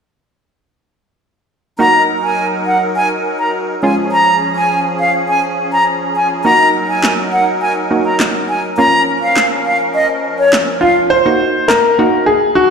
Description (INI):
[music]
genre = dance-pop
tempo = 103 BPM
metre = 4/4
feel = straight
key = Eb minor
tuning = A4 = 441 Hz
[part]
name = bright silver concert flute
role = melody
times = 1.8-10.9 s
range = Db5 to Bb5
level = -13 LUFS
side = equal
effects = slapback echo, tape echo
[part]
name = hollow square pluck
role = accompaniment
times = 1.8-12.5 s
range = Ab3 to Gb4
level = -18 LUFS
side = right 3 dB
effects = chorus, slapback echo
[part]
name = musette accordion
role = sustained chords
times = 1.8-11.1 s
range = F3 to Bb4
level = -20 LUFS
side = left 1 dB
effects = stereo widening
[part]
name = electronic snare drum and handclaps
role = drums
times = 7.0-11.8 s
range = none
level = -18 LUFS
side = equal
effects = overdrive, slapback echo
[part]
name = warm concert grand piano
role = melody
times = 10.8-12.7 s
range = F4 to C5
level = -11 LUFS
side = left 1 dB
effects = slapback echo, tape echo
[sound]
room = moderate plate reverb, RT60 3.4 s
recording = live gig heard through the venue's PA, recital hall reverb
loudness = -11 LUFS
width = side -6 dB against mid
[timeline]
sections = 1.8-11.1 A section; 11.1-12.7 B section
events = none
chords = 1.8 Ebm; 3.8 Db; 6.5 Ebm; 8.8 Bbm; 11.1 Ebm